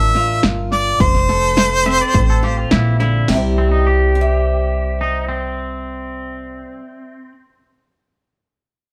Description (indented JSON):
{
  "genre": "honky-tonk and classic country",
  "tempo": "105 BPM",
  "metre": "4/4",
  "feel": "straight",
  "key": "C mixolydian",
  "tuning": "A4 = 437 Hz",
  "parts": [
    { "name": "clear harmonica", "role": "melody", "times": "0.0-2.7 s", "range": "C5 to E5", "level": "-19 LUFS", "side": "equal", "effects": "none" },
    { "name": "picked swing-style acoustic guitar", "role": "accompaniment", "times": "0.0-7.1 s", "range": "C3 to E5", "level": "-25 LUFS", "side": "equal", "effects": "none" },
    { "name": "upright bass", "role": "bass", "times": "0.0-6.6 s", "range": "F1 to C2", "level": "-21 LUFS", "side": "equal", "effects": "none" },
    { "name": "punchy analog drum machine", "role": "drums", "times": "0.1-3.4 s", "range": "hi-hat, kick drum, snare drum", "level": "-20 LUFS", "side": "equal", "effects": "none" },
    { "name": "twangy electric guitar", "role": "second line", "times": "1.9-7.3 s", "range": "C4 to E5", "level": "-27 LUFS", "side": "equal", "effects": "tape echo" }
  ],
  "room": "light reverb",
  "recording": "close, detailed microphones",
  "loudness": "-16 LUFS",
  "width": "mono",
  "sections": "0.0-3.3 A section; 3.3-5.6 B section",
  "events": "none",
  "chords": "0.0 Bb; 1.0 F; 3.3 C"
}